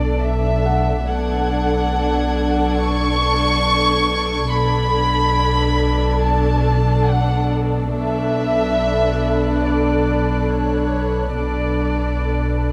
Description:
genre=cinematic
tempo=70 BPM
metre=4/4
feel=straight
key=B minor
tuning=A4 = 440 Hz
part: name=dark chamber violin section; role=melody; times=0.0-12.7 s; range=C#5 to C#6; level=-24 LUFS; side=equal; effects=none
part: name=dark studio violin section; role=second line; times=0.0-12.7 s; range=D4 to A4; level=-24 LUFS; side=equal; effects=none
part: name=warm chamber cello section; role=bass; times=0.0-12.7 s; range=B2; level=-27 LUFS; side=equal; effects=none
part: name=warm chamber double bass section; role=bass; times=0.0-12.7 s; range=B1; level=-28 LUFS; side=equal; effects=none
part: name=deep rumbling drone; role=drone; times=0.0-12.7 s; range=B1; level=-26 LUFS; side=equal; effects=built-in reverb
part: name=felt-muted upright piano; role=texture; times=0.0-12.7 s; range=F#5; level=-34 LUFS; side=equal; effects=none
part: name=warm chamber violin section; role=texture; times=1.1-12.7 s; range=D5 to G#6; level=-36 LUFS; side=equal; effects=none
room=moderate scoring stage reverb, RT60 1.6 s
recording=none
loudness=-18 LUFS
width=mono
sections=0.0-12.7 A section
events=none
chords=0.0 Bm7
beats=0.22 | 1.08 1.94 2.79 3.65 | 4.51 5.37 6.22 7.08 | 7.94 8.79 9.65 10.51 | 11.37 12.22

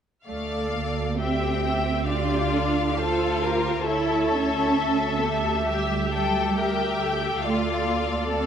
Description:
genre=classical, slow romantic movement for string orchestra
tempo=67 BPM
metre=4/4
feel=rubato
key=D minor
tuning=A4 = 439 Hz
part: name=clear studio violin section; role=melody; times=0.3-8.5 s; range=E5 to G5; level=-30 LUFS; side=left 5 dB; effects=none
part: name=warm studio viola section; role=accompaniment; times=0.3-8.5 s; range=G4 to E5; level=-28 LUFS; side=equal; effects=none
part: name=dark studio cello section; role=bass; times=0.3-8.5 s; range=G3 to G4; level=-27 LUFS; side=right 3 dB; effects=none
part: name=rich chamber double bass section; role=bass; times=0.3-8.5 s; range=D2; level=-30 LUFS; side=right 4 dB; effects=none
part: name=warm studio violin section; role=second line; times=2.1-8.5 s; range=F4 to Bb4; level=-28 LUFS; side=left 4 dB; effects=none
room=moderate concert hall reverb, RT60 2.1 s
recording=none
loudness=-22 LUFS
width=side -8 dB against mid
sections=0.3-8.5 A section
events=none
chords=0.3 Dm; 3.9 A7/D; 7.4 Dm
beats=| 0.27 1.18 2.07 2.98 | 3.88 4.78 5.68 6.57 | 7.45 8.32

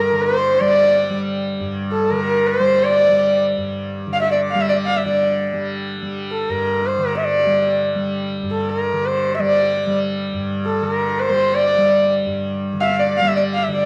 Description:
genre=indian classical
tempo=165 BPM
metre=3/4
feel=straight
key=G raga kafi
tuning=A4 = 440 Hz
part: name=dark sarangi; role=melody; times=0.0-13.9 s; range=A4 to F5+25c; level=-20 LUFS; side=equal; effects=none
part: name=pedal harmonium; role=second line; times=0.0-5.0, 9.5-13.7 s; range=A4 to F5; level=-27 LUFS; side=equal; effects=none
part: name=tanpura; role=drone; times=0.0-13.9 s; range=G2 to G3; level=-25 LUFS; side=equal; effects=none
room=little or no reverb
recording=dry, close 1970s-style studio recording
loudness=-19 LUFS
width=mono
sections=0.0-5.0 A section; 5.0-13.7 A section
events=speeding up 0.0-13.9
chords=none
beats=0.25 | 0.62 0.99 1.36 | 1.73 2.10 2.47 | 2.84 3.21 3.58 | 3.94 4.31 4.68 | 5.04 5.41 5.78 | 6.14 6.50 6.87 | 7.23 7.59 7.96 | 8.32 8.68 9.04 | 9.40 9.76 10.12 | 10.48 10.84 11.19 | 11.55 11.91 12.26 | 12.62 12.97 13.33 | 13.69

